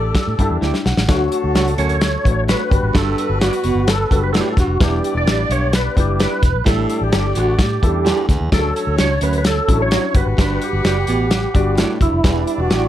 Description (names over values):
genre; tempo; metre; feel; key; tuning
uptempo 1960s-style soul; 129 BPM; 4/4; straight; D major; A4 = 440 Hz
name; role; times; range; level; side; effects
percussive tonewheel organ; melody; 0.0-12.9 s; E4 to D5; -21 LUFS; right 1 dB; overdrive, chorus vibrato, slow rotary speaker
clear horn section; second line; 0.0-12.9 s; F#3 to F#5; -28 LUFS; left 2 dB; none
vintage muted fingered electric bass; bass; 0.0-12.9 s; E1 to A2; -20 LUFS; equal; none
warm soul drum kit; drums; 0.1-12.8 s; hi-hat, kick drum, snare drum; -17 LUFS; equal; none
warm grand piano; accompaniment; 0.4-12.9 s; F#3 to A5; -25 LUFS; left 5 dB; none
electric guitar through a small old amp; stabs; 0.6-12.8 s; D4 to D5; -25 LUFS; right 7 dB; analog chorus
breathy baritone saxophone; riff; 1.1-12.4 s; D2 to B2; -24 LUFS; right 4 dB; none
room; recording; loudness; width
light reverb; none; -14 LUFS; side -12 dB against mid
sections
0.0-1.1 A section; 1.1-12.9 A section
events
grand piano fill 0.2-1.1; drum fill 0.6-1.1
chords
0.0 A7sus4; 1.1 Dmaj7; 2.7 Gmaj7; 4.8 Em7; 6.7 A7sus4; 8.5 Dmaj7; 10.1 Gmaj7; 12.2 Em7